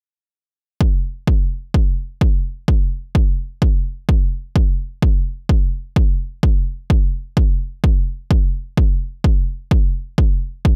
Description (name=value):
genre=techno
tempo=128 BPM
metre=4/4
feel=swing 54% on 16ths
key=none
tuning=none
part: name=electronic kick drum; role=drums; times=0.8-10.8 s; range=none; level=-18 LUFS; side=equal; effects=overdrive
room=little or no reverb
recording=none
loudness=-19 LUFS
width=mono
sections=0.8-10.8 A section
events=none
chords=none